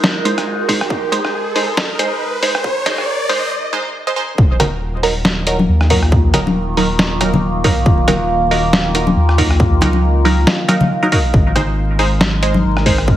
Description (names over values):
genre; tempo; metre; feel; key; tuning
deep dubstep; 138 BPM; 4/4; swing 56% on 16ths, half-time; Eb dorian; A4 = 440 Hz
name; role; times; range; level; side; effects
overtone-sweeping drone; sustained chords; 0.0-13.2 s; Eb3 to Bb4; -21 LUFS; equal; chorus, built-in reverb, phaser
saturated sub bass; bass; 0.0-13.2 s; Eb1 to Eb2; -17 LUFS; equal; high-pass filter
trip hop sampler-style drum kit; drums; 0.0-13.1 s; hi-hat, rim click, snare drum; -18 LUFS; equal; studio reverb
riser; sound effects; 0.0-3.5 s; none; -22 LUFS; equal; none
filtered dub chord stab; stabs; 0.3-13.0 s; Gb3 to C5; -19 LUFS; right 2 dB; phaser, dub echo
electronic kick drum; drums; 0.7-13.2 s; none; -15 LUFS; equal; studio reverb
congas; percussion; 4.6-12.6 s; none; -19 LUFS; left 2 dB; none
room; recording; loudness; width
moderate digital room reverb, RT60 1.0 s, digital ambience; heavily compressed radio sound, vinyl crackle, high-pass filter; -13 LUFS; side -12 dB against mid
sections
0.0-4.4 A section; 4.4-13.2 B section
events
build-up 0.0-4.4; riser 0.0-3.5; filter sweep on synth stab 0.0-4.4; break 3.5-4.4; drop 4.4-13.2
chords
0.0 Ab; 4.4 Ebm; 11.3 Ab